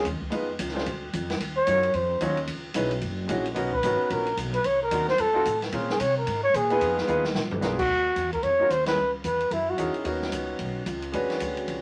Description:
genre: jazz, small-group swing and bop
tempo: 222 BPM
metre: 4/4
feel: swing 61% on 8ths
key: unclear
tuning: A4 = 438 Hz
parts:
  - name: breathy trumpet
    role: melody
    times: 0.0-10.0 s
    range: Fb4 to Db5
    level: -26 LUFS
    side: equal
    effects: none
  - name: clear concert grand piano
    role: accompaniment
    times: 0.0-11.8 s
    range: Gb3 to Db5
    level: -31 LUFS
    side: equal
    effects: none
  - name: upright bass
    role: bass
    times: 0.0-11.8 s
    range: Gb1 to C3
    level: -35 LUFS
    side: equal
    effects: none
  - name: open jazz drum kit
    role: drums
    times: 0.0-11.8 s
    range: crash cymbal, hi-hat, kick drum, ride cymbal, snare drum, toms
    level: -36 LUFS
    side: equal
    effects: none
room: wet studio reverb, RT60 0.5 s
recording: none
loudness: -26 LUFS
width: mono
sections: 0.0-7.9 A section; 7.9-11.8 B section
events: trumpet solo 0.0-7.9; drum fill 7.1-7.6; band accent 8.8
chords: 0.3 Fm7b5; 0.9 Dm; 1.4 Ebm9; 2.5 Dbm9; 3.0 Gb13; 3.6 Bmaj9; 4.6 Cm7b5; 5.2 F7b9; 5.7 Bbm9; 6.8 Fm7b5; 7.3 Bb7b9; 7.9 Ebm9; 9.0 Dbm7; 9.5 Gb13; 10.1 Bmaj9; 11.1 E13

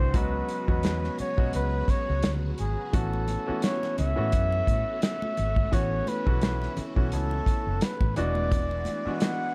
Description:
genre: lush 1970s-style soul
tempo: 86 BPM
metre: 4/4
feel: swing 54% on 16ths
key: A major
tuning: A4 = 436 Hz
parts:
  - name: breathy flugelhorn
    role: melody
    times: 0.0-9.5 s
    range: G#4 to F#5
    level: -34 LUFS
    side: equal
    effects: none
  - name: clear concert grand piano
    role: accompaniment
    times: 0.0-9.5 s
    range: E3 to F#4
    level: -35 LUFS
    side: equal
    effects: none
  - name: phased string machine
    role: sustained chords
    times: 0.0-9.5 s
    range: C#3 to B4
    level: -44 LUFS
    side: equal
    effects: ensemble chorus, phaser
  - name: vintage muted fingered electric bass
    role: bass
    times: 0.0-9.1 s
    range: E1 to A2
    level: -31 LUFS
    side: equal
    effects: none
  - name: warm soul drum kit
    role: drums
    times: 0.1-9.4 s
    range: hi-hat, kick drum, snare drum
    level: -29 LUFS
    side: equal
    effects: none
  - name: congas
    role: percussion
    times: 2.9-9.4 s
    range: none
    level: -41 LUFS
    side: equal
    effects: none
room: little or no reverb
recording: dark, warm production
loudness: -27 LUFS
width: mono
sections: 0.0-9.5 A section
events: none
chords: 0.1 C#7sus4; 2.9 A69; 8.2 E9

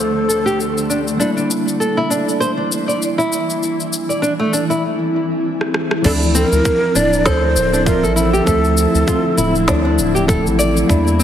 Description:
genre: organic downtempo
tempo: 99 BPM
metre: 4/4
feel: swing 57% on 16ths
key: D minor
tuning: A4 = 438 Hz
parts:
  - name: breathy ney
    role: melody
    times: 0.0-0.9, 6.1-9.9 s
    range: A4 to D5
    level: -20 LUFS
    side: equal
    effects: vintage 12-bit sampler grit, digital delay, shimmer reverb
  - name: tine electric piano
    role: accompaniment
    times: 0.0-11.2 s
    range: D2 to E5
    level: -22 LUFS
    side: moving between left 2 dB and right 6 dB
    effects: auto-pan, sidechain pumping, low-pass filter, ping-pong delay, shimmer reverb
  - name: granular cloud pad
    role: sustained chords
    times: 0.0-11.2 s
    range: D3 to E4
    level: -22 LUFS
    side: left 1 dB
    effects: built-in reverb, sidechain pumping, shimmer reverb
  - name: organic electronic drum kit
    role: drums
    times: 0.0-11.2 s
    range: crash cymbal, rim click, shaker, snare drum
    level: -22 LUFS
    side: left 2 dB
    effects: overdrive
  - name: quartz singing bowl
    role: texture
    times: 0.0-4.8 s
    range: C6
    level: -44 LUFS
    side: left 4 dB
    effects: none
  - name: nylon-string guitar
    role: arpeggios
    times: 0.3-11.2 s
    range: A3 to D5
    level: -20 LUFS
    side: equal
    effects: low-pass filter, ping-pong delay, shimmer reverb
  - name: round analog bass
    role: bass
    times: 6.0-11.2 s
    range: D1 to E2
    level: -18 LUFS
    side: equal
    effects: none
  - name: electronic kick drum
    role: drums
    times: 6.0-11.0 s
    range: none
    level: -20 LUFS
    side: equal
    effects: overdrive
room: moderate lush hall reverb, RT60 1.7 s, small room ambience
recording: heavily compressed radio sound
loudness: -14 LUFS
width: side -10 dB against mid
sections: 0.0-6.0 A section; 6.0-11.2 B section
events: filter sweep on tine electric piano 0.0-6.0; drum fill 5.6-6.0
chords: 0.0 Dm7; 1.2 Em7b5; 6.0 Dm7

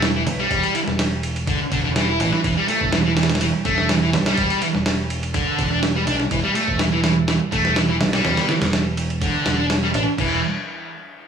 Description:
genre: breakbeat, breaks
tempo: 124 BPM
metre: 4/4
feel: straight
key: E minor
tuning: A4 = 440 Hz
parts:
  - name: thick fuzz guitar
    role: riff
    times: 0.0-10.4 s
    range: D3 to E4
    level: -20 LUFS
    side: equal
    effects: distortion, tape echo
  - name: fingered electric bass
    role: bass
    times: 0.0-10.4 s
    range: E1 to B1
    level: -24 LUFS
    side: right 1 dB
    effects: tube saturation
  - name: dusty soul sampler-style drum kit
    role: drums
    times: 0.0-10.3 s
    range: crash cymbal, kick drum, ride cymbal, snare drum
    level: -23 LUFS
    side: right 1 dB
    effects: studio ambience
room: light reverb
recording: dry, gritty hardware recording, studio reverb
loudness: -17 LUFS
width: side -7 dB against mid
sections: 0.0-10.2 A section; 10.2-11.3 B section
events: drop 0.0-10.2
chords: 0.0 Em7; 10.2 N.C.

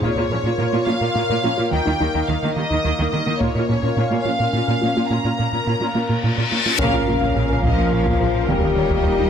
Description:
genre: cinematic, hybrid orchestral and electronic film score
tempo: 71 BPM (dotted quarters)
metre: 6/8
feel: straight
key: Bb dorian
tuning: A4 = 442 Hz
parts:
  - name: warm symphonic violin section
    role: melody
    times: 0.0-9.3 s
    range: Db5 to Bb5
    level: -25 LUFS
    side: left 2 dB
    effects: none
  - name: warm symphonic viola section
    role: accompaniment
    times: 0.0-9.3 s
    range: Db3 to Bb4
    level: -27 LUFS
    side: right 1 dB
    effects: none
  - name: hollow soft pad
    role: sustained chords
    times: 0.0-9.3 s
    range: Bb3 to F5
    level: -25 LUFS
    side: left 1 dB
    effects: chorus
  - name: woody wave-folded pluck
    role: arpeggios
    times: 0.0-9.3 s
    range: Eb3 to Bb4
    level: -30 LUFS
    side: right 1 dB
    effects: none
  - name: rubbery square bass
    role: riff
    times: 0.0-9.3 s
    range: Eb2 to Bb3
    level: -24 LUFS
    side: right 2 dB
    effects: none
  - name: rich symphonic cello section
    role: bass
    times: 0.0-9.3 s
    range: Bb2 to G3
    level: -26 LUFS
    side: right 2 dB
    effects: none
  - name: taiko ensemble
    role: drums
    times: 0.0-9.3 s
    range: none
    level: -27 LUFS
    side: left 1 dB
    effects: none
  - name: reverse cymbal and sub drop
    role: sound effects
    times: 6.0-8.5 s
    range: none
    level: -25 LUFS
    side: left 4 dB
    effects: none
  - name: rich symphonic violin section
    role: second line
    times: 6.8-9.3 s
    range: Bb4 to F5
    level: -28 LUFS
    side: left 2 dB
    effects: none
  - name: mellow French horn section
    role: sustained chords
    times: 6.8-9.3 s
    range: Db4 to G4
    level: -23 LUFS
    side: left 7 dB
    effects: none
  - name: warm trombone section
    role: sustained chords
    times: 6.8-9.3 s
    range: Bb2 to Bb3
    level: -30 LUFS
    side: right 7 dB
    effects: none
  - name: clear symphonic double bass section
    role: bass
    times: 6.8-9.2 s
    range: Bb1 to Eb2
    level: -29 LUFS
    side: right 2 dB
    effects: none
  - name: warm sub bass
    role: bass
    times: 6.8-9.3 s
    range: Eb1 to Bb1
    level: -27 LUFS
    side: equal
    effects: none
room: light reverb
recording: close, detailed microphones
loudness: -17 LUFS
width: side -8 dB against mid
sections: 0.0-6.8 A section; 6.8-9.3 B section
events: reverse cymbal 6.0-6.8; band accent 6.8-7.4; impact 6.8-8.5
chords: 0.0 Bbm; 1.7 Eb; 3.4 Bbm; 8.5 Eb

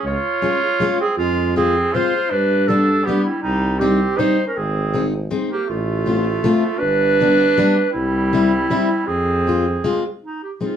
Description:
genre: alpine folk, alpine dance band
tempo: 159 BPM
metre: 3/4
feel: swing 54% on 8ths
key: unclear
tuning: A4 = 440 Hz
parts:
  - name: clear clarinet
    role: melody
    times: 0.0-10.8 s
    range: Eb4 to Db5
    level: -20 LUFS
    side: right 2 dB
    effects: none
  - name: clear trumpet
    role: second line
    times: 0.0-10.0 s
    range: G3 to F4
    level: -24 LUFS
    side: right 2 dB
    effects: none
  - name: clear tuba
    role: bass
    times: 0.0-9.8 s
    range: G1 to G2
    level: -22 LUFS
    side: equal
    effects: none
  - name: fingerpicked plugged-in steel-string acoustic guitar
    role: accompaniment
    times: 0.4-10.8 s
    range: G3 to F4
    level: -20 LUFS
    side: left 3 dB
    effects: none
room: wet studio reverb, RT60 0.6 s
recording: band playing live in one room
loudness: -16 LUFS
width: side -9 dB against mid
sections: 0.0-1.2 A section; 1.2-10.2 B section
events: none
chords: 0.0 Db; 1.2 Fm; 2.3 G; 3.4 Cm; 4.6 Ab; 5.7 F/A; 6.8 G; 7.9 C; 9.1 Fm; 10.2 Ab

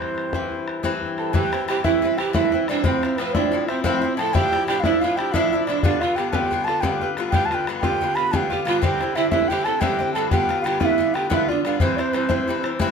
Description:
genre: celtic folk, Celtic slip jig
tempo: 120 BPM (dotted quarters)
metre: 9/8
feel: straight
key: C major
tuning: A4 = 440 Hz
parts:
  - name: wooden flute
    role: melody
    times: 0.0-12.9 s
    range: B4 to B5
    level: -24 LUFS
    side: right 3 dB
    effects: none
  - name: Irish bouzouki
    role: accompaniment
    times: 0.0-12.9 s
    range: G2 to F4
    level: -24 LUFS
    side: left 5 dB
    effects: none
  - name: bodhran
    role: percussion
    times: 0.0-12.9 s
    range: none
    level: -26 LUFS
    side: left 2 dB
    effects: none
  - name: breathy mellow pan flute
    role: second line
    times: 1.2-12.9 s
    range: C4 to B4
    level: -24 LUFS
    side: right 7 dB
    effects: none
room: moderate studio reverb, RT60 0.5 s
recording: none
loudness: -19 LUFS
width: side -6 dB against mid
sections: 0.0-1.3 A section; 1.3-12.9 A section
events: none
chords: 0.0 C; 2.8 Fmaj7; 4.3 Dmadd9; 5.8 G7; 8.8 Cadd9; 10.3 G7; 11.8 C

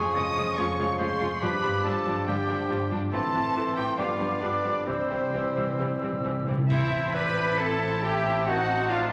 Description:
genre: classical, dramatic, fast romantic movement for symphony orchestra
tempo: 128-144 BPM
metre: 4/4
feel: rubato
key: C major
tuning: A4 = 442 Hz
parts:
  - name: warm symphonic violin section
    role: melody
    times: 0.0-9.1 s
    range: C5 to Eb6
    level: -38 LUFS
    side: equal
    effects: none
  - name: clear clarinet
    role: second line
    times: 0.0-9.1 s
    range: E4 to C5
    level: -38 LUFS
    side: equal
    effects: none
  - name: silver concert flute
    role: second line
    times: 0.0-9.1 s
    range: C5 to E6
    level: -35 LUFS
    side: equal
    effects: none
  - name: warm oboe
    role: second line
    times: 0.0-9.1 s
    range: C4 to Eb5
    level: -36 LUFS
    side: equal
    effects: none
  - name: warm symphonic violin section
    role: second line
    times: 0.0-9.0 s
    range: A3 to B5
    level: -37 LUFS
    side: equal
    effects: none
  - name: warm bassoon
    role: accompaniment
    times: 0.0-6.4 s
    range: E3 to G3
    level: -37 LUFS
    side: equal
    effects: none
  - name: warm symphonic viola section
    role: accompaniment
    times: 0.0-9.1 s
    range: E3 to E4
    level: -38 LUFS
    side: equal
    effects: none
  - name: warm French horn section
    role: sustained chords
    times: 0.0-8.6 s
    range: D3 to D4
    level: -39 LUFS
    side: equal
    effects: none
  - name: concert harp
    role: arpeggios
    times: 0.0-9.1 s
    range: F2 to A5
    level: -38 LUFS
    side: equal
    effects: none
  - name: rich symphonic cello section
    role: bass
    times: 0.0-9.1 s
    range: F2 to B4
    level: -39 LUFS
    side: equal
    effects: none
  - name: rich symphonic double bass section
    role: bass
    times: 0.0-9.1 s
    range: F1 to C2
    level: -39 LUFS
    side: equal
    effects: none
  - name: timpani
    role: percussion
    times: 1.4-2.0, 4.9-6.7 s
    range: G2 to C3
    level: -33 LUFS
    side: equal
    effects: none
  - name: mellow trumpet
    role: stabs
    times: 6.7-9.1 s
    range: E4 to B4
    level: -36 LUFS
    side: equal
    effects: none
  - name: clash cymbals and concert bass drum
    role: percussion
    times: 6.7-7.5 s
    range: none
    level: -40 LUFS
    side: equal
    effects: none
room: wet recital hall reverb, RT60 1.3 s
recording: vinyl crackle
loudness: -27 LUFS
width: mono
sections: 0.0-6.7 A section; 6.7-9.1 B section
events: timpani fill 4.9-6.7; band accent 6.7-7.1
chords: 0.0 Db/F; 1.4 G7; 3.1 Am; 4.0 G7; 4.9 C; 6.7 Am; 8.5 Adim7

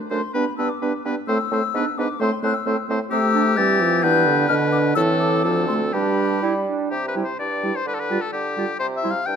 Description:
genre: quick classical-period movement for wind quintet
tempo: 128 BPM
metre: 2/4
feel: rubato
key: C major from 3.1 s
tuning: A4 = 439 Hz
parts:
  - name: mellow silver concert flute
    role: melody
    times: 0.1-9.1 s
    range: G5 to A6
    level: -25 LUFS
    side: left 10 dB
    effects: none
  - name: clear oboe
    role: second line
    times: 0.1-9.4 s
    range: G4 to G5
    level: -26 LUFS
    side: left 4 dB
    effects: none
  - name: dark French horn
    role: accompaniment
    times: 0.1-9.1 s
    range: D3 to B3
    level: -24 LUFS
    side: equal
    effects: none
  - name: mellow clarinet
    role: accompaniment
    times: 0.1-9.1 s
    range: B3 to F4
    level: -27 LUFS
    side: right 10 dB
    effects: none
  - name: warm bassoon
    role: bass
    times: 0.1-9.4 s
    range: D2 to G3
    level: -25 LUFS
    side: right 2 dB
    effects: none
room: light reverb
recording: close, detailed microphones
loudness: -18 LUFS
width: side -7 dB against mid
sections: 0.0-6.9 A section; 6.9-9.4 B section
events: none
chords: 0.3 G; 1.3 Am; 1.7 E7/G#; 2.2 Am; 3.1 C; 4.0 G; 5.0 Am; 5.4 Dm; 5.9 G; 6.9 C; 7.9 G5/D; 8.8 C

